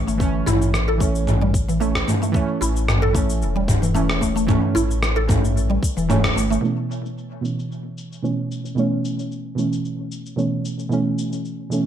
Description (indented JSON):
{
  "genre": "organic downtempo",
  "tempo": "112 BPM",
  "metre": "4/4",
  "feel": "swing 54% on 16ths",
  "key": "unclear",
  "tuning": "A4 = 441 Hz",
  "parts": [
    { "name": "deep mellow chord stab", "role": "accompaniment", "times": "0.0-11.9 s", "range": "B2 to C#4", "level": "-24 LUFS", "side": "right 3 dB", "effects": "chorus, sidechain pumping, ping-pong delay" },
    { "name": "warm sub bass", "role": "bass", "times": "0.0-6.6 s", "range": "E1 to A1", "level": "-23 LUFS", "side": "left 1 dB", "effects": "sidechain pumping" },
    { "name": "mallet-like synth pluck", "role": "arpeggios", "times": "0.1-6.6 s", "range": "E3 to A4", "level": "-24 LUFS", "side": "equal", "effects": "ensemble chorus, ping-pong delay" },
    { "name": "dusty soul sampler-style drum kit", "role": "drums", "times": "0.1-11.8 s", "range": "cabasa, rim click, toms", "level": "-23 LUFS", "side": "left 1 dB", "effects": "low-pass filter on perc, low-pass filter on snare, low-pass filter on toms, low-pass filter on room" },
    { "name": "electronic kick drum", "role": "drums", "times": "0.2-6.3 s", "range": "none", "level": "-22 LUFS", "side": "left 1 dB", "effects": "none" }
  ],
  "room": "light reverb, digital ambience",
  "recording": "none",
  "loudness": "-18 LUFS",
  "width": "side -10 dB against mid",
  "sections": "0.0-6.6 A section; 6.6-11.9 B section",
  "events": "band accent 6.2",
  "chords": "0.0 A; 6.6 B9sus4"
}